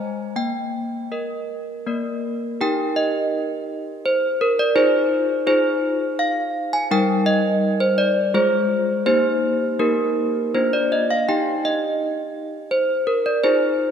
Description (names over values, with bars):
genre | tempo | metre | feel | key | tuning
classical, tune for handbells | 83 BPM | 3/4 | straight | Eb major | A4 = 440 Hz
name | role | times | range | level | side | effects
desk bells | solo | 0.0-13.9 s | G3 to Ab5 | -18 LUFS | equal | none
room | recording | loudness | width
wet church reverb, RT60 3.0 s | dark, warm production | -18 LUFS | side -8 dB against mid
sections
0.0-2.6 A section; 2.6-13.9 B section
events
none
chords
0.4 Eb/Bb; 1.9 Bb; 2.6 Eb; 4.8 Fm/Eb; 6.9 Eb/G; 8.3 Fm/Ab; 9.1 Eb/Bb; 10.5 Bb; 11.3 Eb